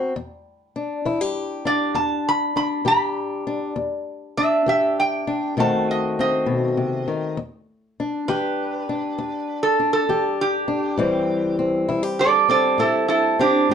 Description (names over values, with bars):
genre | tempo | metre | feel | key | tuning
acoustic country blues, solo or duo | 66 BPM (dotted quarters) | 12/8 | straight | E minor | A4 = 441 Hz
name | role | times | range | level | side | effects
fingerpicked old ladder-braced acoustic guitar | accompaniment | 0.0-13.7 s | E2 to G4 | -22 LUFS | left 2 dB | none
metal-body resonator slide guitar | melody | 1.7-13.7 s | D4 to B5 | -20 LUFS | right 3 dB | none
room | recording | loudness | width
moderate studio reverb, RT60 0.6 s | dark, warm production | -19 LUFS | side -8 dB against mid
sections
0.0-7.4 A section; 7.4-13.7 B section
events
resonator guitar played with a steel bar solo 7.4-13.7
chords
0.2 Em7; 5.6 B7b9; 7.4 Em7; 11.0 Am7